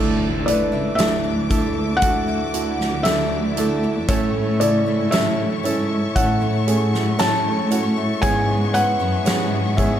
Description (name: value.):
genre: pop ballad.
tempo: 58 BPM.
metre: 4/4.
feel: straight.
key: A major.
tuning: A4 = 438 Hz.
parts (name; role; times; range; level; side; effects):
clear concert grand piano; accompaniment; 0.0-10.0 s; G#2 to B4; -24 LUFS; right 4 dB; none.
warm studio string section; sustained chords; 0.0-10.0 s; E4 to D6; -31 LUFS; left 4 dB; none.
picked steel-string acoustic guitar; arpeggios; 0.0-10.0 s; G#2 to E4; -31 LUFS; left 7 dB; none.
dark symphonic cello section; bass; 0.0-10.0 s; C#2 to A2; -23 LUFS; equal; none.
impact; sound effects; 0.0-4.1 s; none; -32 LUFS; left 1 dB; none.
felt-muted upright piano; melody; 0.5-10.0 s; D5 to A5; -23 LUFS; left 2 dB; ping-pong delay.
huge arena drum kit; drums; 0.5-10.0 s; hi-hat, kick drum, snare drum; -24 LUFS; equal; none.
room: light reverb.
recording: none.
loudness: -17 LUFS.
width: side -10 dB against mid.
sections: 0.0-10.0 A section.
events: impact 0.0-4.1.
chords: 0.0 Dsus2; 4.1 A; 8.2 E6.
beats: 0.99 2.02 3.06 | 4.09 5.12 6.16 7.19 | 8.23 9.26.